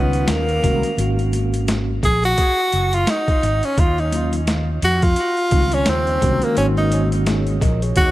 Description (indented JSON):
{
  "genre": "hip hop, jazz-hop",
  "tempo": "86 BPM",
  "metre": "4/4",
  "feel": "swing 58% on 16ths",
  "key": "unclear",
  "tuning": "A4 = 440 Hz",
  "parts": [
    { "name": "breathy tenor saxophone", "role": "melody", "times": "0.0-8.1 s", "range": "Bb3 to Ab4", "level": "-20 LUFS", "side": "equal", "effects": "dub echo" },
    { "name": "mellow tine electric piano", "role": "accompaniment", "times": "0.0-8.1 s", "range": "Db3 to Eb5", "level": "-24 LUFS", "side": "equal", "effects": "fast stereo tremolo, dub echo" },
    { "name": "fretless electric bass", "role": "bass", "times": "0.0-8.1 s", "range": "Gb1 to F2", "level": "-20 LUFS", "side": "equal", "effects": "ensemble chorus" },
    { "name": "boom bap sampler-style drum kit", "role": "drums", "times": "0.1-8.1 s", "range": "hi-hat, kick drum, snare drum", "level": "-21 LUFS", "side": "equal", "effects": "overdrive, dub echo" }
  ],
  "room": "little or no reverb",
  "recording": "echo-heavy mix, lossy compression artefacts",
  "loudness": "-16 LUFS",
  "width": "side -16 dB against mid",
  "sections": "0.0-8.1 A section",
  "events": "tenor saxophone solo 0.0-8.1",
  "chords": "0.3 Eb13; 1.0 Ab9sus4; 3.8 Ebm9; 5.9 Eb13; 6.6 Ab9sus4"
}